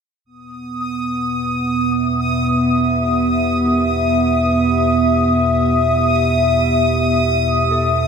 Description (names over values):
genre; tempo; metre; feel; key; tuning
dark ambient drone; free time; none; none; E harmonic minor; A4 = 440 Hz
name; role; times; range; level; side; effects
deep rumbling drone; drone; 0.9-8.1 s; E2 to B2; -22 LUFS; equal; built-in reverb
dark analog pad; sustained chords; 0.6-8.1 s; B3 to E5; -17 LUFS; equal; chorus, shimmer reverb
bubbling stepped-filter texture; texture; 0.5-8.1 s; D#6; -21 LUFS; equal; chorus, built-in reverb, shimmer reverb
clear concert grand piano; arpeggios; 3.6-8.1 s; D#3 to A4; -39 LUFS; equal; none
room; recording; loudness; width
wet huge ambient reverb, RT60 8.1 s; none; -14 LUFS; side -6 dB against mid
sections
0.2-8.1 A section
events
filter sweep on synth drone 0.2-8.1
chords
0.2 Em